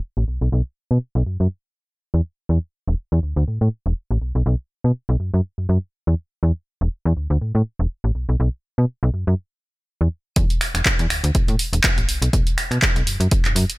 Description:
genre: filtered disco house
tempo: 122 BPM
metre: 4/4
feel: swing 55% on 16ths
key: unclear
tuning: A4 = 440 Hz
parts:
  - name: slap-like FM bass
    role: bass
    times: 0.2-13.6 s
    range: E1 to B2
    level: -18 LUFS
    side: equal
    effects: tube saturation, sidechain pumping, low-pass filter
  - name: electronic kick drum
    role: drums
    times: 10.4-13.4 s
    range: none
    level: -20 LUFS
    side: equal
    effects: none
  - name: punchy analog drum machine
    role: drums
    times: 10.4-13.8 s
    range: finger snaps, handclaps, hi-hat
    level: -21 LUFS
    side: right 1 dB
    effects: sidechain pumping on hats
room: little or no reverb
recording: none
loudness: -19 LUFS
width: side -21 dB against mid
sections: 0.0-10.4 A section; 10.4-13.8 B section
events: filter sweep on FM bass 0.0-10.4; drop 10.4-13.8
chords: none

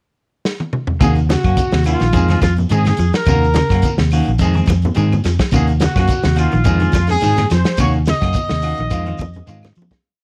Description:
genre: afrobeat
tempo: 106 BPM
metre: 4/4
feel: swing 54% on 16ths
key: Eb dorian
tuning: A4 = 440 Hz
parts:
  - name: crunchy breakbeat drum kit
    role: drums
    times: 0.5-10.0 s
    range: hi-hat, kick drum, snare drum, toms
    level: -22 LUFS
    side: equal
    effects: none
  - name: clear horn section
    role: melody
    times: 1.0-9.7 s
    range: F4 to Eb5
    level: -23 LUFS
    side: equal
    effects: none
  - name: clean electric guitar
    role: arpeggios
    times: 1.0-10.0 s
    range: C3 to F3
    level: -24 LUFS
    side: equal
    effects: none
  - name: semi-hollow electric guitar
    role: stabs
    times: 1.0-9.7 s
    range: Eb3 to Ab4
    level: -26 LUFS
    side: equal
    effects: none
  - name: fingered electric bass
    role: bass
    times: 1.0-9.9 s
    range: Bb1 to F3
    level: -19 LUFS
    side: equal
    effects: none
  - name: claves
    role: percussion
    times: 1.0-9.8 s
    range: none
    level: -36 LUFS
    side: equal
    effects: none
  - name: congas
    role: percussion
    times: 1.0-10.0 s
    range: none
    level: -26 LUFS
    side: equal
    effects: none
  - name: shekere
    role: percussion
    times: 1.0-10.0 s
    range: none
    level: -31 LUFS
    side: equal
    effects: none
room: little or no reverb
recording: dry, close 1970s-style studio recording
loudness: -16 LUFS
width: mono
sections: 0.0-1.0 pickup bar; 1.0-10.0 groove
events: drum fill 0.5-1.0, 9.6-10.0; fade-out 7.8-10.0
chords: 0.0 N.C.; 1.0 Ebm7; 2.1 Fm7; 3.3 Ebm7; 4.4 Fm7; 5.5 Ebm7; 6.7 Fm7; 7.8 Ebm7; 8.9 Fm7

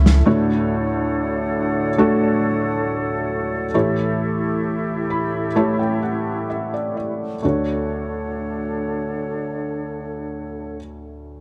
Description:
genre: pop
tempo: 62-70 BPM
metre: 4/4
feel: straight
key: D major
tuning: A4 = 441 Hz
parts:
  - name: felt-muted upright piano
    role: accompaniment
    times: 0.0-11.4 s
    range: D2 to B5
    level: -23 LUFS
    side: equal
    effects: none
  - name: flute section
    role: sustained chords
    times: 0.0-10.8 s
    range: C#4 to F#5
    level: -29 LUFS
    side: equal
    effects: none
room: light reverb, studio reverb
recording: dark, warm production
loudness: -22 LUFS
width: mono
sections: 0.3-7.4 A section; 7.4-11.3 B section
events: slowing down 0.3-7.4; felt piano fill 4.6-7.4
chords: 0.3 Dmaj7; 3.7 A7; 7.4 Dmaj7

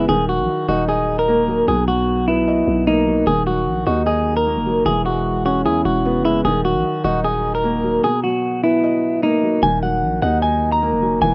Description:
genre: hip hop, trap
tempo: 151 BPM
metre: 4/4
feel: half-time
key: Eb phrygian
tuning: A4 = 440 Hz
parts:
  - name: clean electric guitar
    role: melody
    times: 0.0-11.3 s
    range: D#4 to Bb5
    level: -21 LUFS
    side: equal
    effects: low-pass filter
  - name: felt-muted upright piano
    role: accompaniment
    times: 0.0-11.3 s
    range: B2 to Eb5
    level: -23 LUFS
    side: equal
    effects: low-pass filter
  - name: growling 808-style bass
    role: bass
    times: 0.0-11.3 s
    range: Eb1 to E2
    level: -26 LUFS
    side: equal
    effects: none
room: small room ambience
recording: rough home demo mix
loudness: -18 LUFS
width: mono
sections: 0.0-9.6 A section; 9.6-11.3 B section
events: none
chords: 0.1 Ebm; 1.7 Bmaj7; 3.3 Ebm; 4.9 E6; 6.4 Ebm; 8.0 Bmaj7; 9.6 Ebm

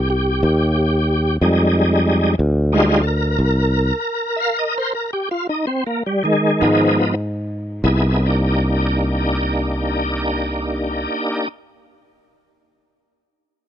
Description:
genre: slow blues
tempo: 47-61 BPM (dotted quarters)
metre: 12/8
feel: straight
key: C minor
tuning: A4 = 440 Hz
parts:
  - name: bright tonewheel organ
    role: sustained chords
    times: 0.0-11.5 s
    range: Eb3 to F5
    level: -18 LUFS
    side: equal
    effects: slow rotary speaker, chorus vibrato
  - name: sustaining fretless electric bass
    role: bass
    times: 0.0-11.1 s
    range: C2 to Ab2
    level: -18 LUFS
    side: equal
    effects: none
room: little or no reverb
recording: dry, close 1970s-style studio recording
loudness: -16 LUFS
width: side -10 dB against mid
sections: 0.0-7.8 A section; 7.8-13.0 B section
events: tonewheel organ solo 0.0-7.8; slowing down 2.1-7.8; stop 3.4-6.6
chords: 0.0 Cm; 1.4 Fm7; 3.4 Cm7; 6.6 Abm6; 7.8 Cm7

